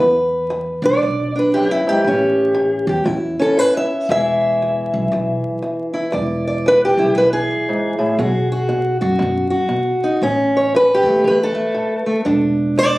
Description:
acoustic country blues, solo or duo; 118 BPM; 4/4; swing 62% on 8ths; E mixolydian; A4 = 441 Hz
fingerpicked acoustic archtop guitar; melody; 0.0-13.0 s; E2 to E5; -15 LUFS; equal
upright bass; bass; 0.0-13.0 s; E1 to F#2; -24 LUFS; equal
light reverb; recorded on a phone in the room, club reverb, vinyl crackle; -15 LUFS; side -19 dB against mid
0.0-13.0 A section
0.0 E7(no3); 2.0 A7; 4.1 E7; 8.2 B5; 10.2 A7; 12.2 E5

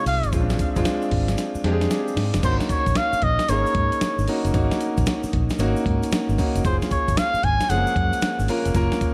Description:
R&B, new jack swing; 114 BPM; 4/4; swing 66% on 16ths; A4 = 440 Hz
trumpet with cup mute; melody; 0.0-8.5 s; C5 to Ab5; -27 LUFS; equal; tape echo, shimmer reverb
clear concert grand piano; accompaniment; 0.0-9.1 s; C3 to Bb4; -28 LUFS; equal; shimmer reverb
vintage muted fingered electric bass; bass; 0.1-8.9 s; F1 to Ab2; -26 LUFS; equal
dusty soul sampler-style drum kit; drums; 0.1-9.1 s; crash cymbal, hi-hat, kick drum, snare drum; -27 LUFS; equal
tube shaker; percussion; 0.1-9.1 s; -45 LUFS; equal
light reverb, small room ambience; dark, warm production; -22 LUFS; mono
0.0-2.4 A section; 2.4-9.1 B section
drum fill 1.4-2.4
0.3 Bb7 (rootless); 2.4 Ab9sus4; 6.6 Gbmaj9

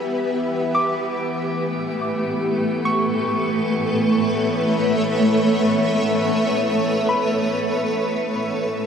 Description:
ambient; free time; E dorian; A4 = 441 Hz
granular cloud pad; sustained chords; 0.0-8.9 s; A3 to F#5; -20 LUFS; equal; built-in reverb
bowed-like drone; drone; 0.0-8.9 s; E3 to B3; -26 LUFS; left 1 dB; built-in reverb
soft round pluck; arpeggios; 0.7-8.9 s; B5 to D6; -28 LUFS; left 1 dB; chorus, tape echo
wet shimmer reverb, RT60 6.6 s; -18 LUFS; side -7 dB against mid
0.0-8.9 A section
fade-out 5.7-8.9
0.0 Em

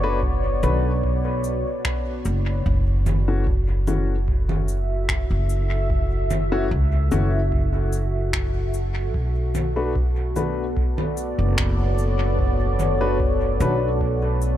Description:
ambient dub; 74 BPM; 4/4; straight; B minor; A4 = 439 Hz
deep dark ambient pad; sustained chords; 0.0-14.6 s; B3 to E5; -27 LUFS; equal; chorus, built-in reverb
warm upright piano; stabs; 0.0-13.9 s; E3 to B4; -29 LUFS; left 5 dB; dub echo
upright bass; bass; 0.0-14.6 s; F#1 to C#2; -22 LUFS; equal
electronic kick drum; drums; 0.2-14.2 s; -26 LUFS; equal
electronic congas, shaker and finger snaps; drums; 0.6-14.6 s; -29 LUFS; right 1 dB; overdrive, dub echo
digital ambience; -20 LUFS; side -12 dB against mid
0.0-2.7 A section; 2.7-14.6 A section
0.0 Bm7; 2.7 F#m7; 9.1 Bm7

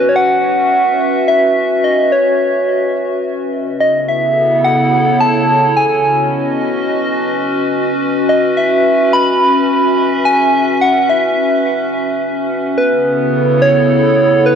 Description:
IDM; 107 BPM; 4/4; swing 62% on 16ths; C# minor; A4 = 440 Hz
soft struck synth lead; melody; 0.0-14.6 s; B4 to B5; -13 LUFS; equal; chorus, tape echo
warbly tape-like pad; sustained chords; 0.0-14.6 s; C#3 to E5; -14 LUFS; equal; chorus, built-in reverb
moderate echo chamber reverb, RT60 2.3 s; -11 LUFS; side -7 dB against mid
0.0-14.6 A section
0.0 C#m7; 3.5 F#m/C#; 5.8 G#m; 8.0 C#m7; 12.5 F#m/C#

